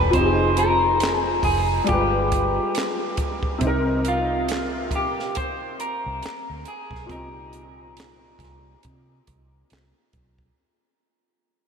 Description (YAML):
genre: R&B, neo-soul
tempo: 69 BPM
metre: 4/4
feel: swing 58% on 16ths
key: C minor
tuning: A4 = 443 Hz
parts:
  - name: electric guitar through a small old amp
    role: melody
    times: 0.0-9.7 s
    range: F4 to C5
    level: -24 LUFS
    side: equal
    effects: wide subtle chorus
  - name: warm upright piano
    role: accompaniment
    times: 0.0-10.6 s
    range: A2 to B4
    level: -25 LUFS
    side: left 1 dB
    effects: ensemble chorus
  - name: vintage muted fingered electric bass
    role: bass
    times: 0.0-10.5 s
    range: E1 to C3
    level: -27 LUFS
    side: right 1 dB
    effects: none
  - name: compact cocktail drum kit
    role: drums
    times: 0.1-10.6 s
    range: handclaps, hi-hat, kick drum, snare drum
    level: -29 LUFS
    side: right 1 dB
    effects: none
room: wet huge ambient reverb, RT60 7.6 s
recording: dreamy mix soaked in reverb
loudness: -20 LUFS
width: side -6 dB against mid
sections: 0.0-10.6 A section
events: fade-out 0.0-10.6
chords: 0.1 Fm7; 1.9 G7b9; 3.6 Cm7